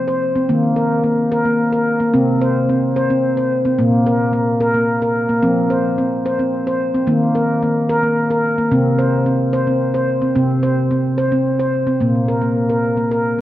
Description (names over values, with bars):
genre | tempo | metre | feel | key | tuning
world meditative, meditative tuned percussion | 73 BPM (dotted quarters) | 6/8 | straight | unclear | A4 = 440 Hz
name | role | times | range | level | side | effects
handpan | solo | 0.0-13.4 s | Bb2 to C5 | -14 LUFS | equal | tape echo
room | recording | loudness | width
wet scoring stage reverb, RT60 1.9 s, small room reverb | worn, warbling old tape, cassette tape, warbly pitch drift | -14 LUFS | side -13 dB against mid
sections
0.0-12.0 A section; 12.0-13.4 B section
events
none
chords
0.5 Eb5; 2.1 N.C.; 5.4 F5; 7.1 Eb5; 8.7 N.C.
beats
| 0.49 1.32 | 2.14 2.96 | 3.79 4.61 | 5.43 6.25 | 7.07 7.89 | 8.72 9.54 | 10.36 11.18 | 12.01 12.83